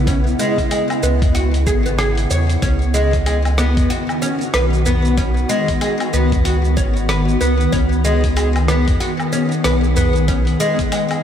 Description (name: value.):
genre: organic downtempo.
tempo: 94 BPM.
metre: 4/4.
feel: swing 60% on 16ths.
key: unclear.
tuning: A4 = 440 Hz.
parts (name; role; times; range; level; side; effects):
ethereal airy pad; sustained chords; 0.0-11.2 s; C#3 to G#4; -21 LUFS; left 1 dB; ensemble chorus, built-in reverb, sidechain pumping.
oud; arpeggios; 0.0-11.0 s; G#3 to C#5; -20 LUFS; equal; ping-pong delay.
warm sub bass; bass; 0.0-10.6 s; G#1 to E2; -17 LUFS; equal; sidechain pumping.
dusty soul sampler-style drum kit; drums; 0.1-11.2 s; cabasa, hi-hat, rim click, woodblock; -26 LUFS; equal; none.
electronic kick drum; drums; 0.1-10.9 s; none; -20 LUFS; equal; none.
udu; percussion; 1.2-10.1 s; none; -26 LUFS; left 1 dB; none.
room: moderate cathedral reverb, RT60 5.7 s.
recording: dreamy mix soaked in reverb.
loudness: -14 LUFS.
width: side -9 dB against mid.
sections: 0.0-11.2 A section.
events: none.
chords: 0.0 C#m7; 2.6 B.